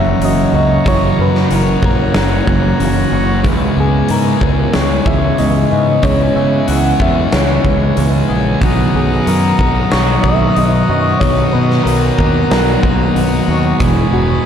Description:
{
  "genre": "rock, shoegaze and dream pop",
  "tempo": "93 BPM",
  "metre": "4/4",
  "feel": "straight",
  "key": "unclear",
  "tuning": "A4 = 440 Hz",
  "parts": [
    { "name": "soft struck synth lead", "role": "melody", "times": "0.0-14.5 s", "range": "F#4 to F#5", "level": "-19 LUFS", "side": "equal", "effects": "chorus, phaser, diffuse ambient delay" },
    { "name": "pipe organ, full organ", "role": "sustained chords", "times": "0.0-14.5 s", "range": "F#4 to D#6", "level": "-22 LUFS", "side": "left 2 dB", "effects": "none" },
    { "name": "electric guitar through a small old amp", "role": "arpeggios", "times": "0.0-14.5 s", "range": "E3 to G#4", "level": "-24 LUFS", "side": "left 1 dB", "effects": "none" },
    { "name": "mellow electric guitar", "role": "riff", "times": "0.0-14.5 s", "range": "E2 to G#4", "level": "-18 LUFS", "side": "right 5 dB", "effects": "reverse reverb" },
    { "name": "thick fuzz guitar", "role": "riff", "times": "0.0-14.5 s", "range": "E2 to C#4", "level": "-18 LUFS", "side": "left 5 dB", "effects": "distortion, lush chorus" },
    { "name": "growling fingered electric bass", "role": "bass", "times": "0.0-14.4 s", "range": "E1 to C#3", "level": "-18 LUFS", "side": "equal", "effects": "overdrive" },
    { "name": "huge arena drum kit", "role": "drums", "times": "0.2-14.0 s", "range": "hi-hat, kick drum, snare drum", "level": "-18 LUFS", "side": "equal", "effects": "none" }
  ],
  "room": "wet cathedral reverb, RT60 6.0 s",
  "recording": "dreamy mix soaked in reverb",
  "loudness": "-11 LUFS",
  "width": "side -8 dB against mid",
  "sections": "0.0-14.5 A section",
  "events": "none",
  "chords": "0.0 F#7; 3.4 C#m7; 8.6 Bmaj7; 13.8 Emaj7",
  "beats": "0.21 | 0.86 1.50 2.15 2.80 | 3.44 4.09 4.74 5.39 | 6.04 6.68 7.33 7.98 | 8.62 9.27 9.92 10.57 | 11.22 11.86 12.51 13.16 | 13.80 14.45"
}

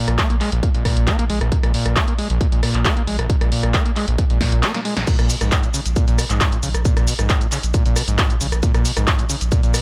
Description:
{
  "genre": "driving peak-time techno",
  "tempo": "135 BPM",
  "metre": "4/4",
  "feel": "straight",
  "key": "Bb phrygian",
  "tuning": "A4 = 440 Hz",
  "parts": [
    { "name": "screaming distorted acid line", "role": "riff", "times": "0.0-9.8 s", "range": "Bb1 to Bb3", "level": "-26 LUFS", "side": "equal", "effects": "distortion, subtle chorus, sidechain pumping, digital delay" },
    { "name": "saturated sub bass", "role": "bass", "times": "0.1-9.7 s", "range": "Bb1", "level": "-25 LUFS", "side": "equal", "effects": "tube saturation, sidechain pumping, low-pass filter" },
    { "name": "punchy analog drum machine", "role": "drums", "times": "0.1-9.8 s", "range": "crash cymbal, handclaps, hi-hat, rim click, shaker, snare drum", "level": "-25 LUFS", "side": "equal", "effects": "sidechain pumping on hats, sidechain pumping on cymbals, sidechain pumping on perc" },
    { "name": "electronic kick drum", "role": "drums", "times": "0.2-9.6 s", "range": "none", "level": "-21 LUFS", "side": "equal", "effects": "none" }
  ],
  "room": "digital ambience",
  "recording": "none",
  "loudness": "-19 LUFS",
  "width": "mono",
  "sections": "0.0-5.1 A section; 5.1-9.8 B section",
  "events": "drum fill 4.4-5.1; drop 5.1-9.8",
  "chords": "0.0 Bb5",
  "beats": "0.18 0.63 1.07 | 1.52 1.96 2.41 2.85 | 3.30 3.74 4.18 4.63 | 5.07 5.52 5.96 6.41 | 6.85 7.30 7.74 8.19 | 8.63 9.07 9.52"
}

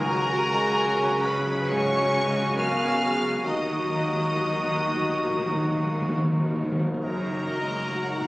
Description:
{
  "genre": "cinematic, emotional film score for orchestra",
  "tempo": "68 BPM",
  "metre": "4/4",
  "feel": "rubato",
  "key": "Eb minor",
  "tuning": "A4 = 439 Hz",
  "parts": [
    { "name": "rich studio violin section", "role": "melody", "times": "0.0-8.3 s", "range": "Bb5 to F6", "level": "-31 LUFS", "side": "equal", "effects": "none" },
    { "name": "bright large flute ensemble", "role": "second line", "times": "0.0-6.7 s", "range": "Ab5 to Bb5", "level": "-32 LUFS", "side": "equal", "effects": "none" },
    { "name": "clear clarinet", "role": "second line", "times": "0.0-8.3 s", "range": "Bb4 to F5", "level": "-33 LUFS", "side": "equal", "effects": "none" },
    { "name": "clear studio violin section", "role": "second line", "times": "0.0-8.3 s", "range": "Bb4 to Gb5", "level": "-35 LUFS", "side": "equal", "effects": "none" },
    { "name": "mellow oboe", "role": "second line", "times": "0.0-6.7 s", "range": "Gb4", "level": "-30 LUFS", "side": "right 1 dB", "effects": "none" },
    { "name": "rich studio viola section", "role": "accompaniment", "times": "0.0-8.3 s", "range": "Db3 to Gb4", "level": "-34 LUFS", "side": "equal", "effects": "none" },
    { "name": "warm grand piano", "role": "accompaniment", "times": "0.0-8.3 s", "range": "Db2 to Db4", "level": "-33 LUFS", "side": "left 1 dB", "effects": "none" },
    { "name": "mellow French horn section", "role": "sustained chords", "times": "0.0-8.3 s", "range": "Gb3 to Bb4", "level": "-32 LUFS", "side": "left 1 dB", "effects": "none" },
    { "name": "concert harp", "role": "arpeggios", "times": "0.0-8.3 s", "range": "Gb2 to F5", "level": "-36 LUFS", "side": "left 2 dB", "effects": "none" },
    { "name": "clear studio cello section", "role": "bass", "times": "0.0-7.8 s", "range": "Gb2 to Eb3", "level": "-33 LUFS", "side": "equal", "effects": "none" },
    { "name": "dark chamber double bass section", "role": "bass", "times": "0.0-7.8 s", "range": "Gb1 to Eb2", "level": "-36 LUFS", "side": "right 1 dB", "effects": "none" },
    { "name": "timpani", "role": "percussion", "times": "3.5-7.0 s", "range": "Eb3", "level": "-29 LUFS", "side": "equal", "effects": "none" }
  ],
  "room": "moderate scoring stage reverb, RT60 1.5 s",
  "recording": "recorded on a phone in the room, studio ambience",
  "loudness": "-22 LUFS",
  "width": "side -19 dB against mid",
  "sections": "0.0-7.0 A section; 7.0-8.3 B section",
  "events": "timpani fill 3.5-7.0",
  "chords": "0.0 Dbsus4; 3.5 Ebm; 7.0 Gb6",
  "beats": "0.84 1.69 2.57 | 3.46 4.36 5.26 6.15 | 7.04 7.92"
}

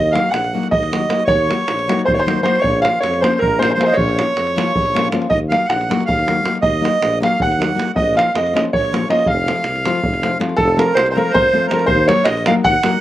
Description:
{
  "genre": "balkan folk, Balkan wedding band",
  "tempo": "316 BPM (eighths)",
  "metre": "7/8",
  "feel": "straight",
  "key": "unclear",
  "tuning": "A4 = 440 Hz",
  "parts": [
    { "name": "felt-muted upright piano", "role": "melody", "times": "0.0-13.0 s", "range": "A4 to Gb5", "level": "-18 LUFS", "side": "equal", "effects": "slapback echo" },
    { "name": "accordion", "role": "second line", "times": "0.0-13.0 s", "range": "A4 to Gb5", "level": "-20 LUFS", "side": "right 2 dB", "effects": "none" },
    { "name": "mellow tuba", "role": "bass", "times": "0.0-12.8 s", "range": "F1 to F2", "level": "-22 LUFS", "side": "equal", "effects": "none" },
    { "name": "nylon-string guitar", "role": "accompaniment", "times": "0.1-13.0 s", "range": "F3 to Bb4", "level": "-21 LUFS", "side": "left 4 dB", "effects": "none" },
    { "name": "davul", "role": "percussion", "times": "0.2-12.9 s", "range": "none", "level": "-22 LUFS", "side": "right 2 dB", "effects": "slapback echo" }
  ],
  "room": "little or no reverb",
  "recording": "recorded outdoors, with no room sound",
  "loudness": "-14 LUFS",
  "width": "side -14 dB against mid",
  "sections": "0.0-10.6 A section; 10.6-13.0 B section",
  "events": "speeding up 0.0-13.0",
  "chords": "0.0 Ebm; 2.6 Bbm; 5.3 Ebm; 8.0 Bbm; 9.3 F; 11.9 Ebm",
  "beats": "0.12 0.32 0.51 0.70 0.90 1.09 | 1.28 1.47 1.67 1.86 2.05 2.24 2.43 | 2.62 2.82 3.01 3.20 3.39 3.58 3.77 | 3.96 4.16 4.35 4.54 4.73 4.92 5.11 | 5.30 5.49 5.68 5.87 6.06 6.25 6.44 | 6.63 6.82 7.01 7.20 7.39 7.58 7.77 | 7.96 8.14 8.33 8.52 8.71 8.90 9.09 | 9.27 9.46 9.65 9.84 10.02 10.21 10.40 | 10.58 10.77 10.96 11.14 11.33 11.51 11.70 | 11.89 12.07 12.26 12.44 12.63 12.81 13.00"
}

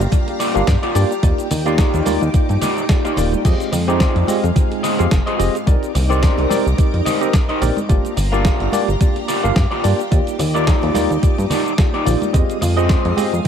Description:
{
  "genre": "nu-disco, nu disco",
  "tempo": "108 BPM",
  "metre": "4/4",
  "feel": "swing 55% on 16ths",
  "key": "F dorian",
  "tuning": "A4 = 440 Hz",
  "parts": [
    { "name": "string machine, full ensemble", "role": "sustained chords", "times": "0.0-13.5 s", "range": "Ab3 to Eb6", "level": "-26 LUFS", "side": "equal", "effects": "ensemble chorus, sidechain pumping" },
    { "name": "chorused synth bass", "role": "bass", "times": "0.0-13.4 s", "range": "Eb1 to G2", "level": "-18 LUFS", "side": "equal", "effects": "none" },
    { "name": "dusty soul sampler-style drum kit", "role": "drums", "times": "0.0-13.5 s", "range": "crash cymbal, hi-hat, shaker, snare drum", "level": "-26 LUFS", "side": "equal", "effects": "none" },
    { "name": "barky tine electric piano", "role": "accompaniment", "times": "0.1-13.5 s", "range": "Bb3 to G5", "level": "-21 LUFS", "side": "equal", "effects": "medium stereo tremolo, vintage 12-bit sampler grit, sidechain pumping, analog delay" },
    { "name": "electronic kick drum", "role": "drums", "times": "0.1-13.5 s", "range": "none", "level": "-16 LUFS", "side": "equal", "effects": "overdrive" },
    { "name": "congas and bongos", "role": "percussion", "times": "0.1-13.5 s", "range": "none", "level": "-28 LUFS", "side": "right 2 dB", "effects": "none" },
    { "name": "electric guitar at the edge of break-up", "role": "riff", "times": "0.4-13.3 s", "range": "Eb4 to F5", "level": "-24 LUFS", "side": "left 1 dB", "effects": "wide subtle chorus, analog delay" }
  ],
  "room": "light reverb, digital ambience",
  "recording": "echo-heavy mix",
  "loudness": "-14 LUFS",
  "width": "side -8 dB against mid",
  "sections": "0.0-13.5 A section",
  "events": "none",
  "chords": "0.0 Gm7; 1.2 Ebmaj7; 3.5 Fm7; 5.7 Cm9; 7.9 Gm7; 10.1 Ebmaj7; 12.3 Fm7",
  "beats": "0.12 0.67 | 1.23 1.78 2.34 2.90 | 3.45 4.01 4.56 5.12 | 5.67 6.23 6.79 7.34 | 7.90 8.45 9.01 9.56 | 10.12 10.67 11.23 11.79 | 12.34 12.90 13.45"
}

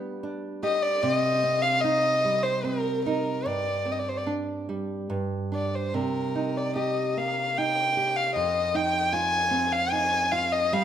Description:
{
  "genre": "celtic folk, Celtic slow air",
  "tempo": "74 BPM",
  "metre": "3/4",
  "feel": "rubato",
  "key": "C minor",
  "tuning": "A4 = 440 Hz",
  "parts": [
    { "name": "nylon-string guitar", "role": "accompaniment", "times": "0.0-10.8 s", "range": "F2 to G4", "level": "-29 LUFS", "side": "right 2 dB", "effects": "none" },
    { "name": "dark violin", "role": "melody", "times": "0.6-10.8 s", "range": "Bb4 to Ab5", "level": "-24 LUFS", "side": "left 1 dB", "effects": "none" }
  ],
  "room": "moderate recital hall reverb, RT60 1.9 s",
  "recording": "minimal, uncompressed stereo recording",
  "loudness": "-24 LUFS",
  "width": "side -9 dB against mid",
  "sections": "0.0-10.8 A section",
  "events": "none",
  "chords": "0.0 G; 1.0 Cm; 3.5 Gsus4; 5.1 G5; 5.9 Cm7; 8.4 F5",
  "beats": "0.24 | 1.03 1.84 2.65 | 3.46 4.27 5.10 | 5.93 6.75 7.57 | 8.35 9.13 9.92 | 10.74"
}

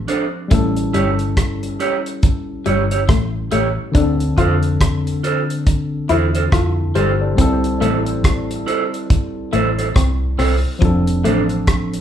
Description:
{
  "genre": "lovers rock reggae",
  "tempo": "70 BPM",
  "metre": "4/4",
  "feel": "swing 60% on 16ths",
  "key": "C major",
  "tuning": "A4 = 441 Hz",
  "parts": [
    { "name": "tine electric piano", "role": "accompaniment", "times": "0.0-12.0 s", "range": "D3 to D5", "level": "-22 LUFS", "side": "left 1 dB", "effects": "overdrive, tape echo" },
    { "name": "vintage muted fingered electric bass", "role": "bass", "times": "0.0-12.0 s", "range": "F1 to F2", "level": "-21 LUFS", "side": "equal", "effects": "none" },
    { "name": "electric guitar through a small old amp", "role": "stabs", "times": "0.1-11.4 s", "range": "D4 to C#5", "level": "-21 LUFS", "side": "right 6 dB", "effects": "none" },
    { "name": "damped 70s drum kit", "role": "drums", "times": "0.1-12.0 s", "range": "hi-hat, kick drum, rim click", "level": "-17 LUFS", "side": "equal", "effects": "none" },
    { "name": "electric guitar through a small old amp", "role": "riff", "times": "0.5-11.5 s", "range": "F3 to F4", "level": "-22 LUFS", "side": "left 4 dB", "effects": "harmonic tremolo" }
  ],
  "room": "moderate large studio reverb, RT60 0.8 s",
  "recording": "band playing live in one room, lossy compression artefacts",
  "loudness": "-15 LUFS",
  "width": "side -9 dB against mid",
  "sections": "0.0-12.0 A section",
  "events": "none",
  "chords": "0.0 F6; 0.5 A7; 3.9 Dm7; 7.4 C6; 10.8 F6",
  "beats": "| 0.51 1.37 2.23 3.09 | 3.95 4.81 5.67 6.53 | 7.38 8.24 9.10 9.96 | 10.82 11.68"
}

